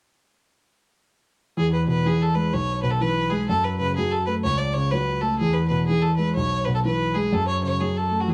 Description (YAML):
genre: celtic folk, Celtic polka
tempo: 125 BPM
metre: 2/4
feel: swing 63% on 8ths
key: E major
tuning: A4 = 439 Hz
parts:
  - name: rich fiddle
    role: melody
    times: 1.6-8.3 s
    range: F#4 to D5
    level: -27 LUFS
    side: equal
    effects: none
  - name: warm grand piano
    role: accompaniment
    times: 1.6-8.3 s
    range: B1 to A3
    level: -25 LUFS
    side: equal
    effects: none
room: light reverb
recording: dark, warm production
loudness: -23 LUFS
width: mono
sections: 1.6-8.3 A section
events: none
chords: 1.6 E; 3.5 F#m; 5.4 E; 7.3 F#m